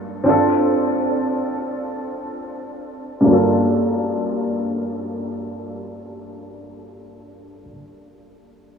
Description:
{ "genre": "R&B", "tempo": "free time", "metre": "none", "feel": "none", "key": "G minor", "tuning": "A4 = 440 Hz", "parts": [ { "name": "felt-muted upright piano", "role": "accompaniment", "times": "0.0-8.8 s", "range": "G2 to A4", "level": "-19 LUFS", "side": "equal", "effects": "lush chorus, low-pass filter" } ], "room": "wet huge ambient reverb, RT60 8.8 s", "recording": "dreamy mix soaked in reverb, small room ambience", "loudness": "-18 LUFS", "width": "side -6 dB against mid", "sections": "0.0-3.3 A section; 3.3-6.3 B section", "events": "filter sweep on felt piano 0.0-3.3", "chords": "0.3 Dm7; 3.3 Gm9", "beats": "free time" }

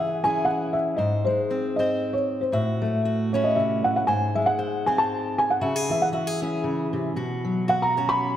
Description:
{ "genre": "acoustic folk duo or small band", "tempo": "117 BPM", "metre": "3/4", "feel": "swing 56% on 8ths", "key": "C# harmonic minor", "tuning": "A4 = 440 Hz", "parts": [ { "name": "felt-muted upright piano", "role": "melody", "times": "0.0-8.4 s", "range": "B#4 to B5", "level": "-23 LUFS", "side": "equal", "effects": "none" }, { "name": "fingerpicked steel-string acoustic guitar", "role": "accompaniment", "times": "0.0-8.4 s", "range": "G#2 to B#4", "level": "-25 LUFS", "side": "left 1 dB", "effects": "none" } ], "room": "wet concert hall reverb, RT60 2.1 s", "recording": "none", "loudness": "-22 LUFS", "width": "side -11 dB against mid", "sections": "0.0-8.4 A section", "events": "felt piano solo 0.0-8.4", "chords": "0.0 C#m; 1.0 G#; 2.5 F#m7/A; 4.1 G#; 5.6 C#m; 7.2 Bsus2", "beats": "0.47 | 0.99 1.50 2.02 | 2.53 3.05 3.56 | 4.08 4.59 5.11 | 5.62 6.13 6.65 | 7.16 7.67 8.19" }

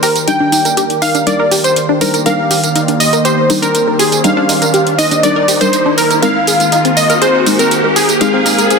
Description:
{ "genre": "progressive house", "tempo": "121 BPM", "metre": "4/4", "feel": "straight", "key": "Eb major", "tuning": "A4 = 440 Hz", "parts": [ { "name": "plucky unison lead", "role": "melody", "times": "0.0-8.8 s", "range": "Ab4 to G5", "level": "-14 LUFS", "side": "equal", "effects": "ping-pong delay" }, { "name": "lush unison pad", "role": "sustained chords", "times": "0.0-8.8 s", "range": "Eb3 to D5", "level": "-18 LUFS", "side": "equal", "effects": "chorus, phaser" }, { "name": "wide unison pluck", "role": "arpeggios", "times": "0.0-8.7 s", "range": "C4 to Bb4", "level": "-17 LUFS", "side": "equal", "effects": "ping-pong delay" }, { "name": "electronic hi-hat and tambourine", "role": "drums", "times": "0.0-8.8 s", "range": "none", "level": "-17 LUFS", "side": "right 2 dB", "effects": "none" }, { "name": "riser", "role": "sound effects", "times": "2.2-8.8 s", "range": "none", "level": "-21 LUFS", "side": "equal", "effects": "none" }, { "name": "deep mellow chord stab", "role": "stabs", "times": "0.3-8.8 s", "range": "G3 to C5", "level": "-19 LUFS", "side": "left 2 dB", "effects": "chorus, ping-pong delay" } ], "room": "wet lush hall reverb, RT60 2.1 s", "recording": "dense, heavily limited modern master, high-pass filter", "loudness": "-9 LUFS", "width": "side -4 dB against mid", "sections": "0.0-8.8 A section", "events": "build-up 0.0-8.8; filter sweep on synth stab 0.0-8.8; filter sweep on analog synth pad 0.0-8.8; riser 2.2-8.8", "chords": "0.0 Ebmaj7; 6.2 Abadd9/Eb", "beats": "| 0.28 0.77 1.27 1.76 | 2.26 2.75 3.25 3.75 | 4.24 4.74 5.24 5.73 | 6.23 6.72 7.22 7.71 | 8.21 8.71" }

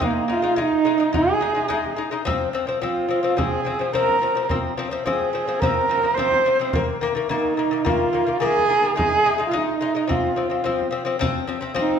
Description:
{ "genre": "mongolian traditional, Mongolian folk", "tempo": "107 BPM", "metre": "4/4", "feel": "straight", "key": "F yu mode", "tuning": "A4 = 442 Hz", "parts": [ { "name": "warm horsehead fiddle", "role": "melody", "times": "0.0-12.0 s", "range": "Bb3 to C5", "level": "-21 LUFS", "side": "right 3 dB", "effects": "none" }, { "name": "lute", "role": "arpeggios", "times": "0.0-12.0 s", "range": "Eb3 to Eb4", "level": "-24 LUFS", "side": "left 5 dB", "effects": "none" }, { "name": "frame drum", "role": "percussion", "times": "0.0-12.0 s", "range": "none", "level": "-29 LUFS", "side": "right 1 dB", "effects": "none" } ], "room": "wet recital hall reverb, RT60 1.5 s", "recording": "minimal, uncompressed stereo recording", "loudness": "-19 LUFS", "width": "side -7 dB against mid", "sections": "0.0-11.2 A section", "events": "none", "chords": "0.0 Ab5; 2.3 F5; 6.7 Eb5; 9.0 Ab5; 10.1 F5", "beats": "| 0.02 0.58 1.14 1.70 | 2.26 2.82 3.38 3.94 | 4.50 5.06 5.62 6.18 | 6.74 7.30 7.86 8.41 | 8.97 9.53 10.09 10.64 | 11.20 11.76" }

